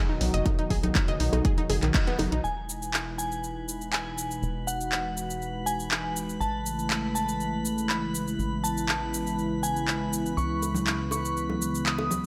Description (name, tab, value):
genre	progressive house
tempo	121 BPM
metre	4/4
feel	straight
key	E major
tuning	A4 = 440 Hz
part	warm analog pad	sustained chords	0.0-12.3 s	B2 to F#4	-34 LUFS	equal	chorus, sidechain pumping
part	unison pluck	arpeggios	0.0-2.4 s	D#3 to D#5	-35 LUFS	equal	sidechain pumping, delay
part	tight sequencer bass	bass	0.2-12.3 s	E1 to C#2	-36 LUFS	equal	sidechain pumping
part	house drum kit	drums	0.2-12.2 s	handclaps, hi-hat, shaker	-34 LUFS	equal	sidechain pumping on hats, sidechain pumping on perc
part	congas and bongos	percussion	0.2-2.3, 10.6-12.2 s	none	-37 LUFS	equal	sidechain pumping on perc
part	electronic kick drum	drums	0.5-2.0 s	none	-27 LUFS	equal	none
part	glassy synth bell	melody	2.4-12.3 s	F#5 to D#6	-35 LUFS	equal	chorus, tremolo, delay
part	drifting glass-harmonics texture	texture	2.9-12.3 s	B4 to B5	-43 LUFS	equal	chorus, built-in reverb, sidechain pumping
room	moderate recital hall reverb, RT60 1.6 s, digital ambience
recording	none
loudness	-28 LUFS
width	mono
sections	0.0-2.4 A section; 2.4-12.3 B section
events	filter sweep on synth pluck 0.0-2.4; band accent 1.9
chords	0.0 B; 2.4 Emaj7; 6.4 Amaj7; 10.4 C#m7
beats	| 0.46 0.95 1.45 1.94 | 2.44 2.94 3.43 3.93 | 4.42 4.92 5.42 5.91 | 6.41 6.90 7.40 7.89 | 8.39 8.89 9.38 9.88 | 10.37 10.87 11.37 11.86